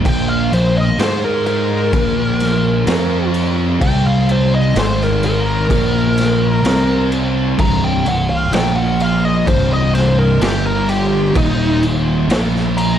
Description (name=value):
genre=stoner and doom metal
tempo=64 BPM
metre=4/4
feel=straight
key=unclear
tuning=A4 = 440 Hz
part: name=fuzz guitar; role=riff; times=0.0-13.0 s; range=C2 to Ab4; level=-24 LUFS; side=left 1 dB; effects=none
part: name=thick fuzz guitar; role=riff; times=0.0-13.0 s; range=C2 to Ab4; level=-22 LUFS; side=left 9 dB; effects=distortion
part: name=thick fuzz guitar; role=riff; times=0.0-13.0 s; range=C2 to Ab4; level=-19 LUFS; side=right 6 dB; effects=distortion
part: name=fuzz lead guitar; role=melody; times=0.1-13.0 s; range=Eb4 to Bb5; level=-20 LUFS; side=equal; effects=wah, distortion, analog delay
part: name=fuzz picked electric bass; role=bass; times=0.1-13.0 s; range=C1 to Ab2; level=-20 LUFS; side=left 1 dB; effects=overdrive, tube saturation
part: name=raw garage drum kit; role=drums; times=0.1-13.0 s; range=crash cymbal, kick drum, snare drum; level=-21 LUFS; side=equal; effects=none
room=light reverb, small room ambience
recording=dark, warm production, lossy compression artefacts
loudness=-13 LUFS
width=side -9 dB against mid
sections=0.0-13.0 A section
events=lead electric guitar solo 0.0-13.0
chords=0.0 Bb5; 1.0 Ab5; 1.9 Bb5; 2.9 F5; 3.8 C5; 4.8 Ab5; 5.7 Bb5; 6.6 C5; 8.5 Bb5; 9.5 C5; 10.4 G5; 11.4 Eb5; 12.3 Bb5